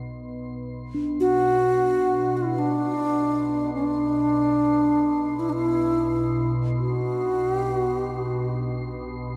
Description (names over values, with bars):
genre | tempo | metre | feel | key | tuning
world meditative, free-time meditation music | free time | none | none | B minor pentatonic | A4 = 441 Hz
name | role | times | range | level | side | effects
icy glass pad | drone | 0.0-9.4 s | B1 to B2 | -32 LUFS | equal | chorus, built-in reverb
bronze singing bowl | texture | 0.9-8.9 s | D4 | -36 LUFS | equal | none
wooden-headed alto flute | melody | 1.2-8.9 s | D4 to F#4 | -24 LUFS | equal | tape echo
room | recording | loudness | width
wet huge ambient reverb, RT60 5.0 s | dark, warm production | -24 LUFS | mono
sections
0.1-9.4 A section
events
none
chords
none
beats
free time